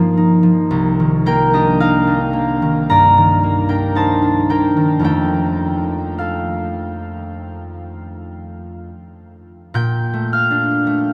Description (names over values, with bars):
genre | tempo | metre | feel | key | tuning
classical, solo harp piece | 46-59 BPM | 4/4 | rubato | unclear | A4 = 439 Hz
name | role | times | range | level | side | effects
concert harp | solo | 0.0-11.1 s | C2 to G6 | -17 LUFS | equal | none
room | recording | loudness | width
wet huge ambient reverb, RT60 8.1 s | in a vast, echoing space | -16 LUFS | mono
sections
0.0-9.7 A section; 9.7-11.1 B section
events
none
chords
0.0 Eb69/G; 0.7 Cm11; 5.1 Faug7; 9.7 Bbmaj7